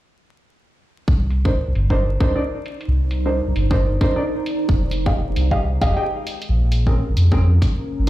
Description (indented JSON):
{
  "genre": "UK garage, two-step garage",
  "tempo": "133 BPM",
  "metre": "4/4",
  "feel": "swing 66% on 16ths",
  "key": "C minor",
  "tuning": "A4 = 438 Hz",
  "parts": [
    { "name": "dark detuned saw bass", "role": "bass", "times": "1.1-8.1 s", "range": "F1 to F2", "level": "-18 LUFS", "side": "equal", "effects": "sidechain pumping" },
    { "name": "electronic kick drum", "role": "drums", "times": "1.1-7.7 s", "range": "none", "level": "-19 LUFS", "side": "equal", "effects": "none" },
    { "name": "deep dark ambient pad", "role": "texture", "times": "2.6-8.1 s", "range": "Db4 to Bb5", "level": "-28 LUFS", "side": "right 2 dB", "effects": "chorus, built-in reverb, sidechain pumping" },
    { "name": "electronic hi-hat", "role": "drums", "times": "1.3-8.1 s", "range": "none", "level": "-34 LUFS", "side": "equal", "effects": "low-pass filter on hats" },
    { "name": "dark grand piano", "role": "stabs", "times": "1.5-8.1 s", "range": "C4 to G5", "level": "-24 LUFS", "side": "equal", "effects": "low-pass filter, ping-pong delay" }
  ],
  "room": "digital ambience",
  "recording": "played on a big sound system in a bare room, large studio reverb, vinyl crackle",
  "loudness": "-17 LUFS",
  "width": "side -15 dB against mid",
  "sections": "1.1-8.1 A section",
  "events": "none",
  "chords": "1.1 Cm9; 4.7 Fm9; 6.3 Bbm9",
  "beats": "| 1.08 1.53 1.98 2.43 | 2.88 3.33 3.79 4.24 | 4.69 5.14 5.59 6.04 | 6.49 6.94 7.39 7.84"
}